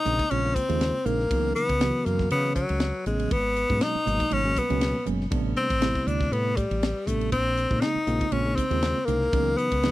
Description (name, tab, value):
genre	electric jazz fusion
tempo	120 BPM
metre	4/4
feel	swing 54% on 16ths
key	unclear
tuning	A4 = 440 Hz
part	edgy tenor saxophone	melody	0.0-9.9 s	Gb3 to Eb4	-26 LUFS	left 2 dB	none
part	bell-like tine electric piano	accompaniment	0.1-9.9 s	Cb3 to Gb4	-30 LUFS	right 3 dB	medium stereo tremolo
part	woody fretless electric bass	bass	0.1-9.9 s	Gb1 to Db3	-28 LUFS	equal	none
part	tight funk drum kit	drums	0.1-9.9 s	hi-hat, kick drum, ride cymbal, snare drum	-29 LUFS	equal	none
room	light reverb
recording	dry, close 1970s-style studio recording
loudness	-22 LUFS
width	side -16 dB against mid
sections	0.0-9.9 A section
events	none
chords	0.0 Bbm11; 1.3 Dbm11; 3.3 Abm11; 5.3 Am11; 7.3 Bbm11; 9.3 Dbm11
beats	0.31 0.81 | 1.31 1.81 2.31 2.81 | 3.31 3.82 4.32 4.82 | 5.32 5.82 6.33 6.83 | 7.33 7.83 8.33 8.84 | 9.34 9.84